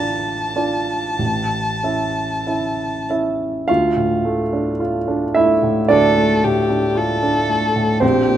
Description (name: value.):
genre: classical, romantic duo for violin and grand piano.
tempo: 46-57 BPM.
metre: 4/4.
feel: rubato.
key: D minor.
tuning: A4 = 438 Hz.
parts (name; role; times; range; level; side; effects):
rich violin; melody; 0.0-8.4 s; G4 to A5; -20 LUFS; left 2 dB; none.
warm grand piano; accompaniment; 0.0-8.4 s; A1 to F5; -17 LUFS; right 2 dB; none.
room: moderate recital hall reverb, RT60 1.5 s.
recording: close, detailed microphones.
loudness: -16 LUFS.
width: side -11 dB against mid.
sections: 0.0-3.7 A section; 3.7-8.4 B section.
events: none.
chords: 0.0 Dm/A; 1.2 A; 3.7 Dm.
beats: 1.19 2.46 | 3.68 4.80 5.90 6.96 | 8.02.